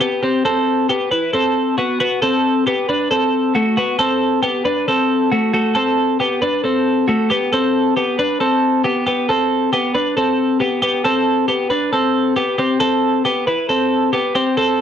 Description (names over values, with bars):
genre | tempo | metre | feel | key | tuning
indie pop | 136 BPM | 4/4 | straight | G major | A4 = 440 Hz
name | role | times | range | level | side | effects
twelve-string electric guitar | solo | 0.0-14.8 s | A3 to B4 | -15 LUFS | equal | slapback echo
room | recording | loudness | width
moderate club reverb, RT60 0.8 s | none | -15 LUFS | side -8 dB against mid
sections
0.0-9.1 A section; 9.1-14.8 A section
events
none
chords
0.0 Am; 1.8 D6; 7.3 G; 12.6 Am